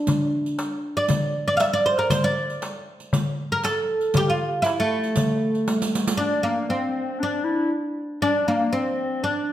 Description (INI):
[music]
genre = Arabic maqam ensemble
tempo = 118 BPM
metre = 4/4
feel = straight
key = unclear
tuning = A4 = 439 Hz
[part]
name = oud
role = melody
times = 0.0-9.5 s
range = A3 to F5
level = -22 LUFS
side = right 1 dB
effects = none
[part]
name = darbuka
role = percussion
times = 0.1-6.1 s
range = none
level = -26 LUFS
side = left 2 dB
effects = none
[part]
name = riq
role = percussion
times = 0.1-6.2 s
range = none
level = -30 LUFS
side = right 3 dB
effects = none
[part]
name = breathy clarinet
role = second line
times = 6.2-9.5 s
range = Bb3 to E4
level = -26 LUFS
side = left 4 dB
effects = none
[sound]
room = wet recital hall reverb, RT60 1.2 s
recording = none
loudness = -21 LUFS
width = side -12 dB against mid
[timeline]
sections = 0.0-6.2 A section; 6.2-9.5 B section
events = drum fill 5.7-6.2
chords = none